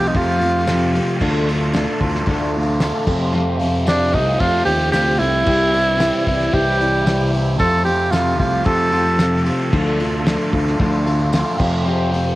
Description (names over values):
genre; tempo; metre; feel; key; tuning
folk rock and heartland rock; 113 BPM; 4/4; straight; unclear; A4 = 441 Hz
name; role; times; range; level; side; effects
bright tenor saxophone; melody; 0.0-9.5 s; D4 to A4; -19 LUFS; right 1 dB; cassette tape, tape echo
picked steel-string acoustic guitar; accompaniment; 0.0-12.4 s; C3 to A4; -25 LUFS; left 3 dB; none
tonewheel organ; sustained chords; 0.0-12.4 s; G3 to A4; -29 LUFS; equal; none
crunchy overdriven guitar; riff; 0.0-12.4 s; F2 to F4; -22 LUFS; right 1 dB; phaser
modern bright fingered electric bass; bass; 0.0-12.4 s; C2 to F2; -21 LUFS; equal; none
damped 70s drum kit; drums; 0.1-12.3 s; crash cymbal, hi-hat, kick drum, snare drum; -24 LUFS; equal; cassette tape
tambourine; percussion; 0.7-11.4 s; none; -38 LUFS; left 6 dB; none
room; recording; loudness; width
light reverb, small room ambience; home recording on cassette; -15 LUFS; side -17 dB against mid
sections
0.0-12.4 A section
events
none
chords
0.0 Fadd9; 1.2 Dm; 3.1 Fadd9; 5.5 C; 7.6 Fadd9; 9.7 Dm; 11.6 Fadd9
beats
0.14 0.67 | 1.21 1.74 2.27 2.81 | 3.34 3.87 4.40 4.94 | 5.47 6.00 6.54 7.07 | 7.60 8.13 8.66 9.20 | 9.73 10.26 10.79 11.32 | 11.86